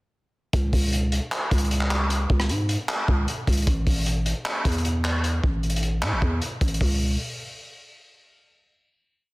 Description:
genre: hip hop, trap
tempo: 153 BPM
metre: 4/4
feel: half-time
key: C# minor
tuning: A4 = 435 Hz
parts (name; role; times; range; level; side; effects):
- growling 808-style bass; bass; 0.5-7.2 s; A1 to A2; -24 LUFS; equal; none
- crunchy breakbeat drum kit; drums; 0.5-6.9 s; handclaps, hi-hat, kick drum, rim click; -25 LUFS; equal; none
room: little or no reverb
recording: dense, heavily limited modern master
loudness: -22 LUFS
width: side -22 dB against mid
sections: 0.5-6.8 hook; 6.8-8.4 final note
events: none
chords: none

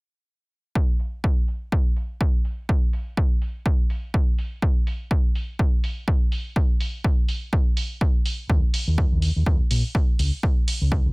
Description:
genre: filtered disco house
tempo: 124 BPM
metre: 4/4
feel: swing 57% on 16ths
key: unclear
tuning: A4 = 444 Hz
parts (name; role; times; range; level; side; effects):
- electronic kick drum; drums; 0.8-11.0 s; none; -21 LUFS; equal; none
- electronic hi-hat; drums; 1.0-10.8 s; none; -32 LUFS; right 2 dB; sidechain pumping on hats, low-pass filter on hats
- fingered electric bass; bass; 8.5-11.1 s; Bb1 to Eb2; -22 LUFS; equal; tube saturation, sidechain pumping, low-pass filter
room: digital ambience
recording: none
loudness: -20 LUFS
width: side -31 dB against mid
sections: 0.8-11.1 A section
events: filter sweep on drum 0.8-11.1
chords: none

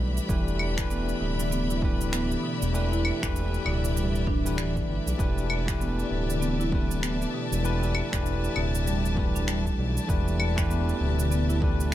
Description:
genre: organic downtempo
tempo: 98 BPM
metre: 4/4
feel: swing 60% on 16ths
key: E minor pentatonic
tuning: A4 = 439 Hz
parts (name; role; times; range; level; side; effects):
- bell-like tine electric piano; accompaniment; 0.0-11.9 s; E3 to B4; -32 LUFS; left 2 dB; medium stereo tremolo, sidechain pumping, ping-pong delay
- warm studio string section; sustained chords; 0.0-11.9 s; G4 to B5; -35 LUFS; left 2 dB; sidechain pumping
- smooth synth bass; bass; 0.0-11.9 s; D1 to B1; -28 LUFS; equal; none
- electronic shaker, claves and finger snaps; drums; 0.2-11.9 s; none; -34 LUFS; equal; none
- marimba with medium hard mallets; arpeggios; 0.3-11.9 s; B2 to E4; -32 LUFS; equal; ping-pong delay
- electronic kick drum; drums; 0.3-11.8 s; none; -29 LUFS; equal; none
room: light reverb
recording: none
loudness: -24 LUFS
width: side -13 dB against mid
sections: 0.0-11.9 A section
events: none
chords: 0.0 Em7

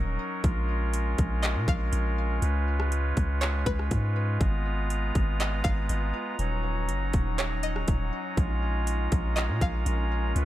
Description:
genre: hip hop, atmospheric cloud-rap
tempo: 121 BPM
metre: 4/4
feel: half-time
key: unclear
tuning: A4 = 439 Hz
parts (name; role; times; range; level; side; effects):
- string-like resonator pluck; melody; 0.0-10.3 s; B4 to E#5; -37 LUFS; equal; chorus, tape echo
- pipe organ, soft reed; sustained chords; 0.0-10.4 s; F#3 to A#5; -32 LUFS; right 1 dB; sidechain pumping
- long sustained 808-style bass; bass; 0.0-10.4 s; D#1 to A#2; -27 LUFS; equal; none
- trap drum kit; drums; 0.4-10.4 s; handclaps, hi-hat, kick drum, rim click; -28 LUFS; equal; overdrive
- wind-like tuned noise texture; texture; 4.8-10.4 s; C#4 to A#5; -41 LUFS; right 2 dB; built-in reverb
room: little or no reverb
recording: faint mains hum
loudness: -25 LUFS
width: side -14 dB against mid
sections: 0.0-10.4 A section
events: none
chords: 0.4 A#m7; 2.4 C#7; 4.4 G#m69; 6.4 D#m7; 8.4 A#m7

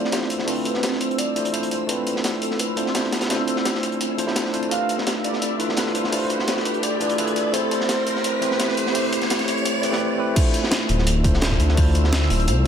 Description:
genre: liquid drum and bass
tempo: 170 BPM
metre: 4/4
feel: straight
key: D dorian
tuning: A4 = 442 Hz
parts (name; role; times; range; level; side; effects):
- warm velvety synth lead; melody; 0.0-10.0 s; A4 to F5; -28 LUFS; right 1 dB; chorus, tremolo, tape echo
- bright tine electric piano; accompaniment; 0.0-12.7 s; A3 to C5; -25 LUFS; equal; medium stereo tremolo, ping-pong delay
- ethereal airy pad; sustained chords; 0.0-12.7 s; C4 to E6; -30 LUFS; right 3 dB; ensemble chorus, built-in reverb, phaser, sidechain pumping
- dark detuned saw bass; bass; 0.0-12.7 s; D1 to G2; -26 LUFS; equal; high-pass filter
- crunchy breakbeat drum kit; drums; 0.0-12.6 s; hi-hat, snare drum; -28 LUFS; equal; high-pass filter on hats, high-pass filter on snare, high-pass filter on room
- riser; sound effects; 1.0-10.0 s; none; -30 LUFS; right 1 dB; none
- breakbeat sampler-style drum kit; drums; 0.1-12.6 s; crash cymbal, hi-hat, snare drum; -28 LUFS; left 1 dB; none
- electronic kick drum; drums; 10.4-11.8 s; none; -20 LUFS; equal; none
room: light reverb, digital ambience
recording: none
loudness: -19 LUFS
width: side -8 dB against mid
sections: 0.0-10.4 A section; 10.4-12.7 B section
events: build-up 0.0-10.4; riser 1.0-10.0; drop 10.4-12.7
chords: 0.0 Dm9; 4.7 G13; 7.5 Am9; 10.4 Dm9

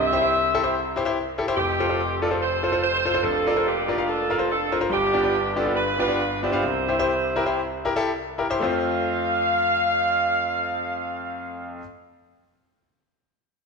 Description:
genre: uptempo gospel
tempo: 108-144 BPM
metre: 4/4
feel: swing 57% on 8ths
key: F major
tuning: A4 = 441 Hz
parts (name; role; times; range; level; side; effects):
- mellow saxophone section; melody; 0.0-11.8 s; Bb3 to F5; -23 LUFS; right 2 dB; slapback echo
- clear concert grand piano; accompaniment; 0.0-11.8 s; F1 to F5; -25 LUFS; left 2 dB; none
room: moderate scoring stage reverb, RT60 1.6 s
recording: none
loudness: -21 LUFS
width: side -4 dB against mid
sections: 0.0-1.6 A section; 1.6-8.6 B section; 8.6-13.0 C section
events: slowing down 4.9-8.6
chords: 0.0 C; 1.6 F; 3.2 Bb/F; 4.9 G7; 6.6 C; 8.6 F

